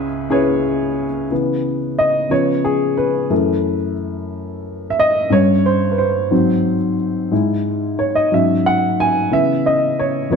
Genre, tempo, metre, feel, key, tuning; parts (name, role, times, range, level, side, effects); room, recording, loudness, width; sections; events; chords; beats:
gospel; 60 BPM (dotted quarters); 6/8; straight; C# minor; A4 = 438 Hz
dark upright piano; solo; 0.0-10.4 s; C#2 to G#5; -15 LUFS; equal; slapback echo
moderate echo chamber reverb, RT60 2.0 s; dark, warm production; -15 LUFS; side -6 dB against mid
0.0-1.3 A section; 1.3-10.4 B section
upright piano solo 1.3-10.4
0.0 C#m7; 2.3 C#7; 3.3 F#m7; 5.3 Gadd11; 6.3 G#7; 7.3 C#madd9/G#; 8.3 G#7sus4; 9.3 C#m7
0.31 | 1.31 2.31 | 3.31 4.31 | 5.31 6.31 | 7.31 8.31 | 9.31 10.31